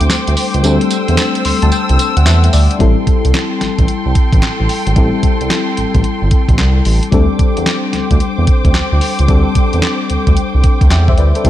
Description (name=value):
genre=R&B, new jack swing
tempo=111 BPM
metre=4/4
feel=swing 64% on 16ths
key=unclear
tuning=A4 = 440 Hz
part: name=FM electric piano with tremolo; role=accompaniment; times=0.0-11.5 s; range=G3 to C6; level=-17 LUFS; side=left 4 dB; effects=slapback echo
part: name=muted studio string section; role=sustained chords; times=0.0-11.5 s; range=A4 to E6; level=-21 LUFS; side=equal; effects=none
part: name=smooth synth bass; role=bass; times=0.0-11.5 s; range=G1 to E2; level=-13 LUFS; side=equal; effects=none
part: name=clean 12-bit digital drum machine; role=drums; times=0.0-11.5 s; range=handclaps, hi-hat, kick drum, snare drum, tambourine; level=-14 LUFS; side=equal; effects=none
room=light reverb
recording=none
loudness=-10 LUFS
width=side -13 dB against mid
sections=0.0-2.8 A section; 2.8-11.5 B section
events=kick muted 0.6-2.8; FM electric piano fill 1.2-2.8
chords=0.0 D7sus4; 2.8 Am7; 7.1 D7sus4